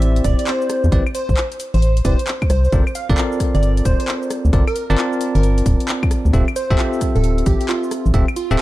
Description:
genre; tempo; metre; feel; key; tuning
UK garage, two-step garage; 133 BPM; 4/4; swing 64% on 16ths; G dorian; A4 = 439 Hz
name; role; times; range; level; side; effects
glassy wavetable pluck; melody; 0.0-8.6 s; F4 to F5; -24 LUFS; right 1 dB; chorus, digital delay
bell-like tine electric piano; stabs; 0.0-8.6 s; C4 to A5; -22 LUFS; equal; medium stereo tremolo
organ-like FM bass; bass; 0.0-8.6 s; D1 to E2; -16 LUFS; equal; sidechain pumping
house drum kit; drums; 0.0-8.6 s; cabasa, claves, handclaps, hi-hat, rim click; -27 LUFS; left 1 dB; overdrive, small room reverb
electronic kick drum; drums; 0.2-8.3 s; none; -18 LUFS; equal; overdrive, small room reverb
room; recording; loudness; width
light reverb; dark, warm production; -15 LUFS; side -16 dB against mid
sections
0.0-8.6 A section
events
none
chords
0.0 Am11; 2.7 Gm11; 6.3 Dm11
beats
0.02 0.47 | 0.92 1.37 1.82 2.27 | 2.73 3.18 3.63 4.08 | 4.53 4.98 5.43 5.88 | 6.33 6.79 7.24 7.69 | 8.14 8.59

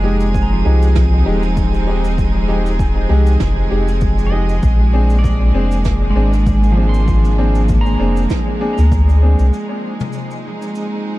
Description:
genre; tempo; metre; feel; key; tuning
ambient dub; 98 BPM; 4/4; swing 55% on 16ths; unclear; A4 = 440 Hz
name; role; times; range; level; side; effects
clear symphonic string section; sustained chords; 0.0-11.2 s; F3 to Ab4; -22 LUFS; right 1 dB; none
pedal steel guitar; arpeggios; 0.0-9.3 s; F3 to C6; -25 LUFS; right 1 dB; low-pass filter, tape echo
clear upright piano; stabs; 0.0-9.4 s; Ab3 to Ab4; -24 LUFS; left 1 dB; dub echo
soft dub sub bass; bass; 0.0-9.5 s; Eb1 to D2; -14 LUFS; equal; none
drifting glass-harmonics texture; texture; 0.0-9.5 s; Ab5; -32 LUFS; right 10 dB; chorus, built-in reverb
jazz brush drum kit; drums; 0.2-10.9 s; cabasa, snare drum, toms; -32 LUFS; right 1 dB; dub echo
electronic kick drum; drums; 0.3-9.1 s; none; -19 LUFS; equal; overdrive
room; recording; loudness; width
little or no reverb; dark, warm production; -12 LUFS; side -17 dB against mid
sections
0.0-9.5 A section; 9.5-11.2 B section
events
none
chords
0.0 Fm7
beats
0.34 0.96 1.57 | 2.18 2.79 3.41 4.02 | 4.63 5.24 5.86 6.47 | 7.08 7.69 8.30 8.92 | 9.53 10.14 10.75

